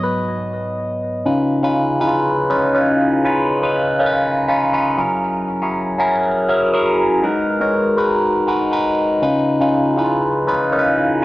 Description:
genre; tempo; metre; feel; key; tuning
disco; 120 BPM; 4/4; straight; unclear; A4 = 440 Hz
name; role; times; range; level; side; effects
barky tine electric piano; solo; 0.0-11.2 s; G#2 to D#5; -15 LUFS; equal; overdrive, phaser, tape echo
room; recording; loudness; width
light reverb; dry, close 1970s-style studio recording; -15 LUFS; side -17 dB against mid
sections
0.0-1.3 A section; 1.3-11.2 B section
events
tine electric piano solo 0.0-1.3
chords
0.0 G#m7; 1.3 C#7; 5.0 F#7; 7.2 G#m7; 9.2 C#7

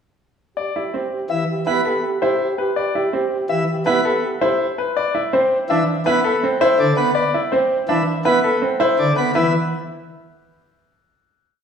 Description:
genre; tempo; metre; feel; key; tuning
classical, minimalist pattern music; 164 BPM; 6/4; straight; A minor; A4 = 440 Hz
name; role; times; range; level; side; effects
clear grand piano; melody; 0.6-9.5 s; A4 to E5; -20 LUFS; left 4 dB; none
warm French horn; second line; 0.6-4.7 s; G4; -25 LUFS; right 2 dB; none
bright grand piano; arpeggios; 0.8-9.5 s; C4 to E4; -22 LUFS; right 4 dB; none
pipe organ, plenum; accompaniment; 1.3-9.5 s; D3 to B3; -20 LUFS; right 1 dB; none
room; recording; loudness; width
wet recital hall reverb, RT60 1.4 s; heard from further back in the room; -16 LUFS; side -7 dB against mid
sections
0.6-9.4 A section; 9.4-11.6 final chord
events
none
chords
0.6 Am11 (rootless); 9.4 E5

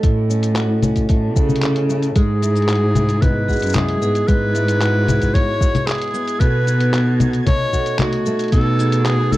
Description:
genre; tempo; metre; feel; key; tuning
folktronica; 113 BPM; 4/4; straight; unclear; A4 = 440 Hz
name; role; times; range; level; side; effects
vibraphone with hard mallets; second line; 0.0-9.4 s; G#3 to D#5; -24 LUFS; right 2 dB; tape echo
fingerpicked steel-string acoustic guitar; arpeggios; 0.0-9.4 s; A2 to F#4; -25 LUFS; equal; none
dark cello; bass; 0.0-9.4 s; F#2 to C#3; -19 LUFS; equal; none
electronic kick drum; drums; 0.0-8.6 s; none; -17 LUFS; equal; none
lo-fi sampler-style drum kit; drums; 0.0-9.4 s; congas, handclaps, hi-hat, shaker; -22 LUFS; left 2 dB; none
bright clarinet; melody; 2.2-9.4 s; F#4 to C#5; -22 LUFS; equal; none
flickering grainy texture; texture; 2.9-9.4 s; G#6; -36 LUFS; right 5 dB; built-in reverb
room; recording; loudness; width
small room ambience; dry, close 1970s-style studio recording; -15 LUFS; side -16 dB against mid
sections
0.0-9.4 A section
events
none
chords
0.0 A6; 2.2 Eadd9; 6.4 B7

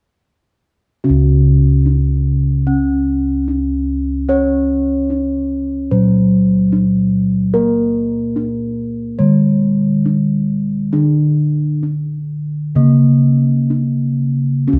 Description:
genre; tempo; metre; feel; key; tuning
Javanese gamelan; 61-74 BPM; 4/4; straight; C# pelog barang; A4 = 436 Hz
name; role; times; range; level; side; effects
gamelan-type bronze metallophone; accompaniment; 1.0-14.8 s; C#3 to C#4; -17 LUFS; equal; none
gamelan-type bossed gongs; bass; 1.0-14.8 s; C#2 to C#5; -19 LUFS; equal; none
room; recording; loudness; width
moderate scoring stage reverb, RT60 1.6 s; none; -15 LUFS; mono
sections
1.0-14.7 A section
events
none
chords
none

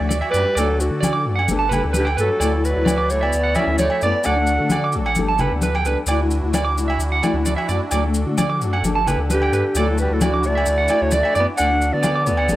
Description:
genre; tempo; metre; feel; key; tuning
highlife guitar band; 131 BPM; 4/4; straight; D major; A4 = 439 Hz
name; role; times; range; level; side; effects
breathy clarinet; melody; 0.0-4.9, 9.3-12.6 s; F#4 to F#5; -21 LUFS; right 1 dB; none
breathy alto saxophone; second line; 0.0-4.9, 9.3-12.6 s; D3 to D4; -28 LUFS; left 2 dB; none
nylon-string guitar; accompaniment; 0.0-12.6 s; E3 to A4; -26 LUFS; left 5 dB; none
musette accordion; sustained chords; 0.0-12.6 s; B3 to E5; -32 LUFS; right 2 dB; none
sub bass with octave; bass; 0.0-12.6 s; G1 to D3; -22 LUFS; equal; none
electric guitar at the edge of break-up; arpeggios; 0.1-12.5 s; B4 to D6; -24 LUFS; right 4 dB; none
congas; percussion; 0.1-12.6 s; none; -25 LUFS; left 2 dB; none
maracas; percussion; 0.1-12.6 s; none; -31 LUFS; left 3 dB; none
agogo bells; percussion; 0.2-12.5 s; none; -29 LUFS; right 1 dB; none
room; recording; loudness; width
light reverb, studio reverb; none; -16 LUFS; side -15 dB against mid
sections
0.0-12.6 A section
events
none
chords
0.0 Dadd9; 0.6 D; 1.5 Gadd9; 2.4 Dadd9; 4.3 D; 5.2 Gadd9; 6.1 Dadd9; 7.9 D; 8.8 Gadd9; 9.8 Dadd9; 11.6 D

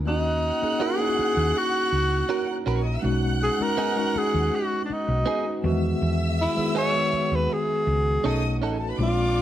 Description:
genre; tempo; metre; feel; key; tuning
soul; 81 BPM; 4/4; straight; B major; A4 = 445 Hz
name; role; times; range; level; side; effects
tine electric piano; accompaniment; 0.0-9.4 s; D#3 to G#4; -28 LUFS; left 1 dB; overdrive, fast stereo tremolo
hollow-body short-scale fingered electric bass; bass; 0.0-9.4 s; A1 to E2; -25 LUFS; equal; none
breathy tenor saxophone; melody; 0.1-9.4 s; D4 to C#5; -25 LUFS; equal; none
warm studio violin section; second line; 0.1-9.4 s; F#4 to F#6; -32 LUFS; equal; none
direct-recorded clean electric guitar; riff; 0.8-8.8 s; B3 to A#4; -31 LUFS; right 8 dB; spring reverb
mellow French horn section; sustained chords; 3.0-9.4 s; G#3 to G#4; -37 LUFS; equal; none
room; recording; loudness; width
light reverb; none; -22 LUFS; side -12 dB against mid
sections
0.0-9.4 A section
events
none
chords
0.1 D#m7; 3.0 B6; 5.6 Emaj7; 8.3 B9

